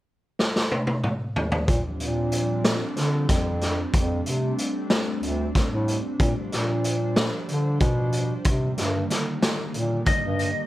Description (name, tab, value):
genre	progressive instrumental, band music in an uneven meter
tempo	186 BPM (eighths)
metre	7/8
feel	straight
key	Bb major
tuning	A4 = 435 Hz
part	raw garage drum kit	drums	0.4-10.5 s	hi-hat, kick drum, snare drum, toms	-24 LUFS	equal	none
part	airy breathy pad	accompaniment	1.7-10.7 s	D3 to C5	-30 LUFS	right 1 dB	chorus, plate reverb
part	mellow bass clarinet	bass	1.7-10.5 s	D2 to D3	-25 LUFS	equal	none
part	lightly driven lead guitar	melody	10.1-10.7 s	Eb5	-26 LUFS	left 2 dB	plate reverb, analog delay
room	light reverb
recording	none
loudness	-22 LUFS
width	side -16 dB against mid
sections	0.0-1.7 A section; 1.7-10.7 B section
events	drum fill 0.4-1.7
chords	0.0 N.C.; 1.7 Bb6; 3.9 F6 (rootless); 6.2 Bb6; 8.5 Cm7 (rootless)